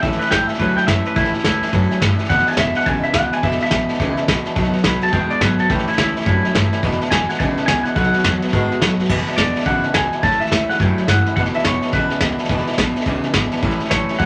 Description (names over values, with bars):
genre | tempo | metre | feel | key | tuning
rockabilly | 212 BPM | 4/4 | swing 62% on 8ths | E mixolydian | A4 = 440 Hz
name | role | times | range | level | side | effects
clean electric guitar | melody | 0.0-14.3 s | E4 to B5 | -23 LUFS | equal | none
picked swing-style acoustic guitar | accompaniment | 0.0-14.3 s | E2 to F#4 | -28 LUFS | equal | none
electric guitar through a small old amp | riff | 0.0-14.3 s | E2 to G#3 | -24 LUFS | equal | none
upright bass | bass | 0.0-14.3 s | E1 to A2 | -26 LUFS | equal | none
vintage brush drum kit | drums | 0.0-14.3 s | crash cymbal, hi-hat, kick drum, snare drum | -23 LUFS | equal | none
room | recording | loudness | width
wet club reverb, RT60 0.6 s | nothing above 10.8 kHz | -18 LUFS | mono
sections
0.0-9.1 A section; 9.1-14.3 B section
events
clean electric guitar solo 0.0-9.1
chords
0.0 A7; 2.3 E7; 4.6 B7; 5.7 A7; 6.8 E7; 8.0 B7; 9.1 E7; 10.2 A7; 11.4 E7; 13.6 A7